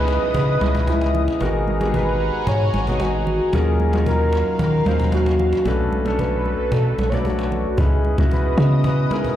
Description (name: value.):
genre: amapiano.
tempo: 113 BPM.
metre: 4/4.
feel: straight.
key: unclear.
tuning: A4 = 440 Hz.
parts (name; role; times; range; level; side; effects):
warm velvety synth lead; melody; 0.0-9.3 s; E4 to C#5; -24 LUFS; right 1 dB; chorus, digital delay.
warm baby grand piano; accompaniment; 0.0-9.4 s; F#3 to E#5; -25 LUFS; left 3 dB; none.
airy breathy pad; sustained chords; 0.0-9.4 s; F#3 to D#6; -29 LUFS; right 1 dB; chorus.
saturated sub bass; bass; 0.0-7.7 s; G#1 to D#3; -21 LUFS; equal; none.
downlifter; sound effects; 0.0-3.5 s; none; -35 LUFS; right 1 dB; none.
cajon; drums; 0.1-9.4 s; none; -30 LUFS; equal; none.
congas; percussion; 0.3-9.2 s; none; -29 LUFS; right 3 dB; none.
deep log drum bass; bass; 7.8-9.1 s; C#2 to C#3; -16 LUFS; equal; none.
room: light reverb, studio ambience.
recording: played on a big sound system in a bare room, large studio reverb.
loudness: -17 LUFS.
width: side -11 dB against mid.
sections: 0.0-9.4 A section.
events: none.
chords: 0.0 C#m9; 1.4 G#m9; 3.5 D#m9; 5.7 Bm9; 7.8 C#m9.